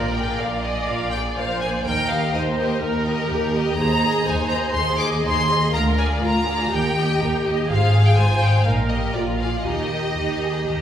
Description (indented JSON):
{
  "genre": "quick classical-period movement for string orchestra",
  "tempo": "123 BPM",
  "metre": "4/4",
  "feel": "straight",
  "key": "Eb major",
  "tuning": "A4 = 440 Hz",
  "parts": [
    { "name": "rich chamber violin section", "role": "melody", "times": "0.0-10.8 s", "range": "Bb4 to D6", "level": "-24 LUFS", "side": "left 2 dB", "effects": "none" },
    { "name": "rich chamber violin section", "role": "second line", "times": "0.0-10.8 s", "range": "Eb4 to F5", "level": "-28 LUFS", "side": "left 3 dB", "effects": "none" },
    { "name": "warm chamber viola section", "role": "accompaniment", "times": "0.0-10.8 s", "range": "F4 to D5", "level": "-26 LUFS", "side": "right 2 dB", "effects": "none" },
    { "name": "rich chamber double bass section", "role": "bass", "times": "0.0-10.8 s", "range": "Ab1 to Eb2", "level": "-25 LUFS", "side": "right 1 dB", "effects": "none" },
    { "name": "warm studio cello section", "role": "bass", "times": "0.0-10.8 s", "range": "D2 to Eb3", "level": "-24 LUFS", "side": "equal", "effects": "none" }
  ],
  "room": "wet recital hall reverb, RT60 1.6 s",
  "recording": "recorded in a church or concert hall",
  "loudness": "-18 LUFS",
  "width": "side -10 dB against mid",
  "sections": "0.0-10.8 A section",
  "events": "none",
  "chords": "0.0 Bb7; 1.9 Eb; 3.8 Ab/Eb; 5.7 Bb7/D; 6.7 Eb; 7.7 Fm/Ab; 8.7 Eb/Bb; 9.1 Bb7; 9.6 Eb"
}